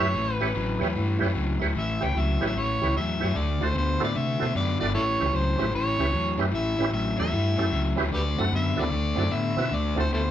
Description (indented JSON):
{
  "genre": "blues",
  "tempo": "151 BPM",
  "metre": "4/4",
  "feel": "swing 66% on 8ths",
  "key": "A mixolydian",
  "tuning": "A4 = 441 Hz",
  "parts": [
    { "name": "overdriven harmonica", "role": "melody", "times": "0.0-10.3 s", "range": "E4 to G5", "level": "-29 LUFS", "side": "equal", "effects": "none" },
    { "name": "tonewheel organ", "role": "accompaniment", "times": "0.0-10.0 s", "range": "C4 to E5", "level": "-30 LUFS", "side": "right 5 dB", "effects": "slow rotary speaker, overdrive, chorus vibrato" },
    { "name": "overdriven semi-hollow guitar", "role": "riff", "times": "0.0-10.3 s", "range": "A2 to B3", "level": "-28 LUFS", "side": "left 4 dB", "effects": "none" },
    { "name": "fingered electric bass", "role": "bass", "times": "0.0-10.3 s", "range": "G1 to C3", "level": "-27 LUFS", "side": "equal", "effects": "none" }
  ],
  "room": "moderate large studio reverb, RT60 0.8 s",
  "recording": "band playing live in one room",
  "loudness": "-23 LUFS",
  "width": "side -11 dB against mid",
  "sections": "0.0-1.7 A section; 1.7-10.3 A section",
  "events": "none",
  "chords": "0.0 A7; 3.3 D7; 4.9 A7; 8.1 D7"
}